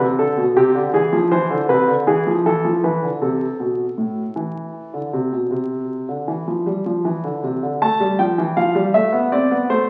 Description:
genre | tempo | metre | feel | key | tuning
classical, baroque-style two-part invention for grand piano | 53 BPM (dotted quarters) | 12/8 | straight | A minor | A4 = 438 Hz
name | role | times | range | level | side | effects
warm grand piano | solo | 0.0-9.9 s | A2 to A5 | -19 LUFS | equal | none
room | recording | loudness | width
wet recital hall reverb, RT60 1.4 s | very old 78 rpm record, vinyl crackle | -19 LUFS | mono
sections
0.0-7.8 A section; 7.8-9.9 B section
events
none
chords
0.0 D5; 0.9 E; 3.2 Am

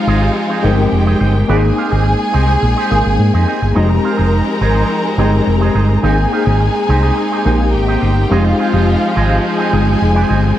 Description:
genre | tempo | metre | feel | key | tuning
disco | 106 BPM | 4/4 | straight | unclear | A4 = 440 Hz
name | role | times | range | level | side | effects
warm studio violin section | second line | 0.0-10.6 s | F4 to Bb5 | -20 LUFS | equal | none
tine electric piano | accompaniment | 0.0-10.6 s | Ab3 to Bb4 | -17 LUFS | left 3 dB | ensemble chorus
clear studio string section | sustained chords | 0.0-10.6 s | F3 to Ab4 | -21 LUFS | equal | none
electric guitar with an envelope filter | accompaniment | 0.1-10.5 s | Eb4 to F5 | -23 LUFS | right 6 dB | spring reverb
fingered electric bass | bass | 0.1-10.5 s | F1 to Ab2 | -14 LUFS | equal | none
room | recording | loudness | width
moderate large studio reverb, RT60 1.1 s | dark, warm production | -11 LUFS | side -12 dB against mid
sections
0.0-10.6 A section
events
none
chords
0.0 Fm7; 1.5 Abmaj7; 3.8 Fm7; 6.0 Abmaj7; 8.3 Fm7

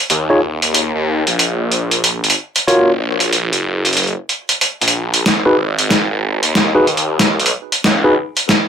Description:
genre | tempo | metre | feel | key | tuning
glitch hop | 93 BPM | 4/4 | swing 62% on 16ths | G# dorian | A4 = 440 Hz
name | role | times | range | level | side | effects
phased detuned saw bass | bass | 0.1-8.1 s | F#1 to D#2 | -18 LUFS | equal | phaser, high-pass filter
boom bap sampler-style drum kit | drums | 0.1-8.7 s | hi-hat, snare drum | -14 LUFS | equal | none
bright tine electric piano | stabs | 0.3-8.1 s | D#4 to C#5 | -15 LUFS | left 1 dB | vintage 12-bit sampler grit, ping-pong delay
room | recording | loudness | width
light reverb | none | -13 LUFS | side -8 dB against mid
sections
0.0-8.7 A section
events
build-up 0.0-8.7; drum fill 5.3-8.7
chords
0.1 D#5; 2.7 F#; 5.3 G#5; 7.8 C#7sus4

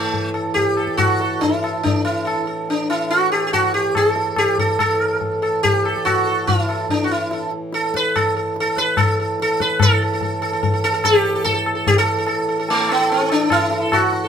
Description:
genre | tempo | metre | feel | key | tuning
indian classical, Hindustani | 144 BPM | 3/4 | straight | A raga kafi | A4 = 440 Hz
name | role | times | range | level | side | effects
sitar | melody | 0.0-14.3 s | A3 to B4 | -18 LUFS | right 1 dB | none
pedal harmonium | drone | 0.0-14.3 s | A2 to E3 | -28 LUFS | equal | none
tabla | percussion | 0.1-14.3 s | none | -22 LUFS | left 3 dB | none
room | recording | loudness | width
moderate studio reverb, RT60 0.5 s | minimal, uncompressed stereo recording | -16 LUFS | side -8 dB against mid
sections
0.0-9.8 A section; 9.8-14.3 B section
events
speeding up 0.0-14.3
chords
none

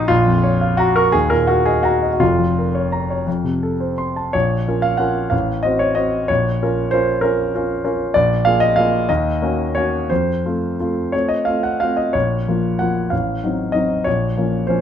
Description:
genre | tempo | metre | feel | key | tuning
classical, romantic character piece for solo piano | 54-66 BPM (dotted quarters) | 6/8 | rubato | Bb minor | A4 = 440 Hz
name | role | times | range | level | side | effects
warm concert grand piano | solo | 0.0-14.8 s | F1 to Eb6 | -16 LUFS | equal | none
room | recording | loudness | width
light reverb | none | -16 LUFS | side -8 dB against mid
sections
0.0-4.3 A section; 4.3-14.8 B section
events
none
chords
0.1 Bbm; 1.1 Eb5; 2.2 Bbm/F; 3.3 F; 4.3 Bbm; 5.3 Adim7; 6.3 Bbm; 8.2 Bb5; 9.1 Ebm7; 10.1 F; 12.1 Bbm; 13.1 Adim7; 14.1 Bbm

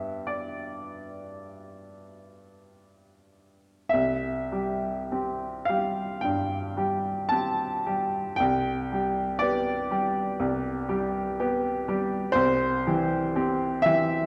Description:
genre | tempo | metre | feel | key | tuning
classical, romantic nocturne for solo piano | 48-63 BPM | 4/4 | rubato | C major | A4 = 438 Hz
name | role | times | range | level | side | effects
bright baby grand piano | solo | 0.0-14.3 s | C2 to A5 | -28 LUFS | equal | none
room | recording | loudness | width
wet recital hall reverb, RT60 1.6 s | dark, warm production | -27 LUFS | mono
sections
0.0-14.3 A section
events
none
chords
0.0 G; 3.9 C; 8.4 G/C; 12.3 C

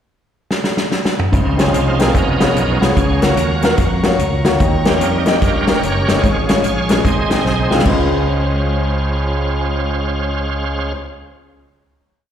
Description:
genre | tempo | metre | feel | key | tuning
uptempo gospel | 147 BPM | 4/4 | swing 64% on 8ths | Db major | A4 = 443 Hz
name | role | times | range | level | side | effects
natural country drum kit | drums | 0.5-8.0 s | crash cymbal, hi-hat, kick drum, snare drum, toms | -18 LUFS | equal | none
warm upright piano | accompaniment | 1.3-11.0 s | Db2 to Eb5 | -19 LUFS | left 3 dB | slapback echo
bright tonewheel organ | sustained chords | 1.3-10.9 s | F3 to F5 | -20 LUFS | right 5 dB | overdrive, chorus vibrato, fast rotary speaker
rich studio string section | sustained chords | 1.3-10.9 s | Db4 to Db6 | -27 LUFS | equal | none
fingered electric bass | bass | 1.3-10.9 s | F1 to G2 | -19 LUFS | right 1 dB | none
room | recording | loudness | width
light reverb | live gig heard through the venue's PA, recital hall reverb | -13 LUFS | side -9 dB against mid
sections
0.0-1.3 pickup bar; 1.3-7.9 breakdown; 7.9-11.1 final chord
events
drum fill 0.5-1.3, 7.5-7.9; tonewheel organ solo 1.3-7.9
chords
0.0 N.C.; 1.3 Dbmaj7; 2.1 Db7/F; 3.0 Gbmaj7/Db; 4.6 Eb7; 6.2 Db/Ab; 7.0 Ab; 7.9 Dbmaj7

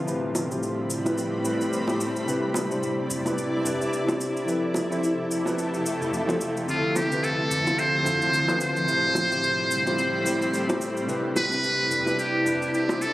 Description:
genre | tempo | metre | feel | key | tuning
sunset chillout | 109 BPM | 4/4 | swing 57% on 16ths | unclear | A4 = 441 Hz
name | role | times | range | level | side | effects
bell-like tine electric piano | accompaniment | 0.0-13.1 s | A2 to C5 | -28 LUFS | equal | auto-pan, low-pass filter, ping-pong delay
shimmering ambient pad | sustained chords | 0.0-13.1 s | D2 to B5 | -29 LUFS | equal | chorus, built-in reverb
electronic shaker and toms | drums | 0.1-13.1 s | none | -36 LUFS | equal | none
bongos | percussion | 0.3-13.0 s | none | -29 LUFS | equal | none
trumpet with metal mute | melody | 6.7-13.1 s | F4 to C5 | -24 LUFS | equal | tape echo
room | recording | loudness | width
moderate plate reverb, RT60 1.9 s | recorded on a phone in the room, studio reverb | -22 LUFS | side -16 dB against mid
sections
0.0-13.1 A section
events
filter sweep on tine electric piano 0.0-13.1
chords
0.1 Am9; 2.3 Cmaj9; 4.5 Fmaj9#11; 6.7 Dm7; 8.9 Am9; 11.1 Cmaj9

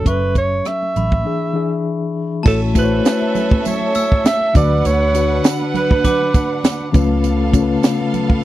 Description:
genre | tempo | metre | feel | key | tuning
lush 1970s-style soul | 100 BPM | 4/4 | swing 54% on 16ths | A major | A4 = 442 Hz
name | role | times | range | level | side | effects
warm alto saxophone | melody | 0.0-6.6 s | A4 to E5 | -19 LUFS | right 3 dB | none
mellow reed electric piano | accompaniment | 0.0-8.4 s | C#3 to E5 | -20 LUFS | left 4 dB | fast tremolo
vintage muted fingered electric bass | bass | 0.0-7.7 s | F#1 to D2 | -19 LUFS | equal | none
compact cocktail drum kit | drums | 0.1-8.4 s | crash cymbal, hi-hat, kick drum, rim click, snare drum | -15 LUFS | right 1 dB | none
congas | percussion | 0.1-8.4 s | none | -27 LUFS | right 6 dB | none
glockenspiel with hard plastic mallets | texture | 0.1-7.2 s | A5 to E6 | -31 LUFS | left 2 dB | none
warm studio violin section | second line | 2.5-8.4 s | B3 to F#5 | -24 LUFS | right 3 dB | none
tambourine | percussion | 2.5-8.0 s | none | -35 LUFS | right 23 dB | none
room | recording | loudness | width
little or no reverb | dry, close 1970s-style studio recording | -14 LUFS | side -14 dB against mid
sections
0.0-2.5 A section; 2.5-8.4 B section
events
break 1.3-2.5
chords
0.1 F#m7; 1.3 E7; 2.5 A6; 4.5 D6; 6.9 C#aug7

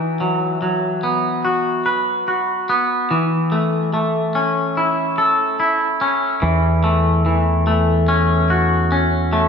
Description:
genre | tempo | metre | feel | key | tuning
rock | 72 BPM | 4/4 | straight | unclear | A4 = 437 Hz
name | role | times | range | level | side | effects
twangy electric guitar | arpeggios | 0.0-9.5 s | E3 to B4 | -17 LUFS | left 1 dB | analog delay, slapback echo
growling fingered electric bass | bass | 6.4-9.5 s | E2 | -17 LUFS | right 1 dB | overdrive
room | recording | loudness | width
wet recital hall reverb, RT60 1.4 s | big arena sound | -16 LUFS | side -6 dB against mid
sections
0.0-9.5 A section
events
none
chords
0.0 Esus2; 3.1 A/E; 6.4 F#m/E

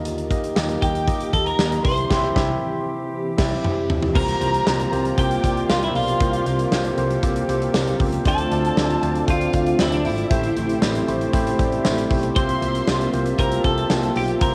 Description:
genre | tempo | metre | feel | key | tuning
1980s-style pop | 117 BPM | 4/4 | straight | unclear | A4 = 441 Hz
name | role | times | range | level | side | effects
tine electric piano | accompaniment | 0.0-14.5 s | A2 to E5 | -26 LUFS | equal | cassette tape
glassy FM pad | sustained chords | 0.0-14.5 s | C3 to A4 | -33 LUFS | equal | none
woody fretless electric bass | bass | 0.0-14.5 s | G#1 to Eb2 | -29 LUFS | equal | none
big rock drum kit | drums | 0.1-14.5 s | crash cymbal, hi-hat, kick drum, snare drum, tambourine, toms | -26 LUFS | equal | cassette tape
twelve-string electric guitar | melody | 0.8-14.5 s | D4 to C5 | -29 LUFS | equal | cassette tape
dark studio violin section | second line | 0.8-14.5 s | D5 to C6 | -32 LUFS | equal | cassette tape, analog delay
analog synth brass | stabs | 5.2-14.5 s | C3 to E5 | -33 LUFS | equal | chorus, cassette tape, analog delay
room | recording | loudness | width
light reverb | home recording on cassette | -21 LUFS | mono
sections
0.0-4.2 A section; 4.2-14.5 B section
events
band accent 2.1-4.2; drum fill 3.1-4.2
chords
0.0 Eb; 1.8 C; 4.2 C7sus4; 8.3 Dm7; 10.3 Am7; 12.4 C7sus4

